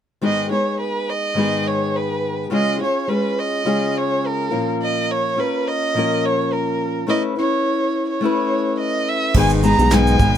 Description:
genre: acoustic pop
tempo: 105 BPM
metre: 4/4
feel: swing 55% on 16ths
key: unclear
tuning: A4 = 436 Hz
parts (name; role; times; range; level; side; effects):
- rich violin; melody; 0.2-10.4 s; Bb4 to Bb5; -21 LUFS; right 2 dB; none
- fingerpicked steel-string acoustic guitar; accompaniment; 0.2-10.4 s; Ab2 to B4; -20 LUFS; left 3 dB; none
- bright tonewheel organ; sustained chords; 9.3-10.4 s; Cb3 to Eb4; -28 LUFS; right 4 dB; overdrive, chorus vibrato, fast rotary speaker
- chorused synth bass; bass; 9.3-10.4 s; Ab1 to Cb2; -18 LUFS; right 1 dB; none
- soft brush drum kit; drums; 9.3-10.4 s; crash cymbal, kick drum, shaker, snare drum; -20 LUFS; right 1 dB; none
room: little or no reverb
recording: close, detailed microphones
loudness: -17 LUFS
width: side -9 dB against mid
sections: 0.2-9.4 A section; 9.4-10.4 B section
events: none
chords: 0.2 Abm; 2.5 Db; 4.5 Bbm; 7.1 Aadd9; 9.4 Abm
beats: | 0.23 0.80 1.37 1.94 | 2.51 3.08 3.65 4.22 | 4.79 5.36 5.93 6.50 | 7.08 7.64 8.21 8.78 | 9.35 9.92

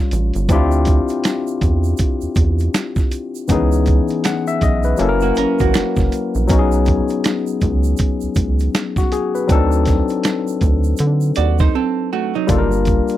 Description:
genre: R&B, neo-soul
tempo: 80 BPM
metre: 4/4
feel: swing 60% on 16ths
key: unclear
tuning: A4 = 441 Hz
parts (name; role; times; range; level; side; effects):
- barky tine electric piano; accompaniment; 0.0-13.2 s; D#3 to F#5; -19 LUFS; left 4 dB; none
- rubbery square bass; bass; 0.1-13.0 s; F#1 to D3; -17 LUFS; right 1 dB; tube saturation
- dusty soul sampler-style drum kit; drums; 0.1-13.2 s; hi-hat, kick drum, snare drum; -18 LUFS; right 1 dB; none
- egg shaker and finger snaps; percussion; 0.1-13.2 s; none; -33 LUFS; right 19 dB; none
- archtop guitar, miked and amplified; second line; 5.2-6.5, 11.4-12.7 s; F#3 to D5; -21 LUFS; right 12 dB; none
room: little or no reverb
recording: dry, close 1970s-style studio recording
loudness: -15 LUFS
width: side -13 dB against mid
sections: 0.5-13.2 A section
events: break 11.7-12.5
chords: 0.5 Dm11; 3.5 C#m9; 5.0 F#7; 6.5 B69; 9.5 D7b9; 12.5 Gm7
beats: | 0.49 1.24 1.99 2.74 | 3.49 4.24 4.99 5.74 | 6.49 7.24 7.99 8.74 | 9.49 10.24 10.99 11.74 | 12.49

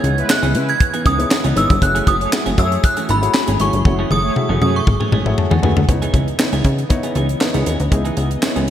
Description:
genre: early-eighties boogie funk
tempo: 118 BPM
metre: 4/4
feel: straight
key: C# minor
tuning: A4 = 438 Hz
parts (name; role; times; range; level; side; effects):
- synth chime; melody; 0.0-5.3 s; B5 to G#6; -20 LUFS; right 1 dB; ensemble chorus, phaser
- dark grand piano; accompaniment; 0.0-8.7 s; A3 to A5; -24 LUFS; left 3 dB; none
- chorused pulse-width pad; sustained chords; 0.0-8.7 s; C#3 to D#5; -28 LUFS; left 1 dB; none
- clean electric guitar; riff; 0.0-8.7 s; E3 to G#4; -26 LUFS; right 4 dB; lush chorus
- plucky analog bass; bass; 0.0-8.7 s; F#1 to C#3; -18 LUFS; equal; none
- tight funk drum kit; drums; 0.0-8.7 s; handclaps, hi-hat, kick drum, snare drum, toms; -18 LUFS; equal; gated reverb
- analog synth brass; second line; 0.2-4.8 s; G#3 to C#5; -27 LUFS; right 1 dB; chorus, digital delay
room: moderate lush hall reverb, RT60 1.8 s, small room ambience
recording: bright 1980s-style digital production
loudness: -14 LUFS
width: side -10 dB against mid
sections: 0.0-5.9 A section; 5.9-8.7 B section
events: drum fill 3.9-5.9; grand piano fill 5.1-5.9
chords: 0.0 C#m9; 1.8 F#m9; 5.9 C#m9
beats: 0.29 0.80 1.31 | 1.82 2.33 2.83 3.34 | 3.85 4.36 4.87 5.38 | 5.89 6.39 6.90 7.41 | 7.92 8.43

